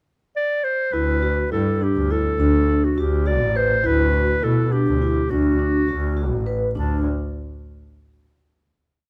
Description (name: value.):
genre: contemporary instrumental, chamber music in an uneven meter.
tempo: 206 BPM (eighths).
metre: 5/8.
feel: straight.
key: D mixolydian.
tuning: A4 = 439 Hz.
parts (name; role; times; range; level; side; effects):
breathy clarinet; melody; 0.4-7.0 s; D4 to D5; -25 LUFS; equal; none.
vibraphone with soft mallets; arpeggios; 0.9-7.0 s; D4 to B4; -26 LUFS; equal; none.
bright double bass; bass; 0.9-7.0 s; A1 to B2; -24 LUFS; equal; none.
room: light reverb.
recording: close, detailed microphones.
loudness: -20 LUFS.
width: mono.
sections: 0.0-0.9 pickup bar; 0.9-6.8 A section; 6.8-8.2 final note.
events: none.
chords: 0.0 N.C.; 0.9 Em/D; 2.4 D6; 3.8 G6/D; 5.3 D; 6.8 N.C..